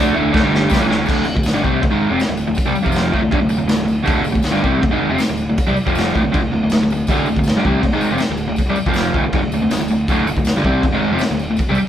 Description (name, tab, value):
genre	garage rock duo or trio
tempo	160 BPM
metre	4/4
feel	straight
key	D minor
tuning	A4 = 440 Hz
part	crunchy overdriven guitar	riff	0.0-11.8 s	D2 to D4	-16 LUFS	equal	none
part	fuzz picked electric bass	bass	0.0-11.8 s	D1 to D2	-26 LUFS	equal	overdrive
part	raw garage drum kit	drums	0.3-11.7 s	crash cymbal, kick drum, snare drum	-19 LUFS	equal	none
part	tambourine	percussion	0.7-11.8 s	none	-36 LUFS	left 3 dB	none
room	moderate stone room reverb, RT60 1.0 s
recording	band playing live in one room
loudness	-14 LUFS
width	side -10 dB against mid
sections	0.0-1.1 A section; 1.1-11.9 B section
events	drum fill 0.0-1.1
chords	0.0 D5; 1.1 Dm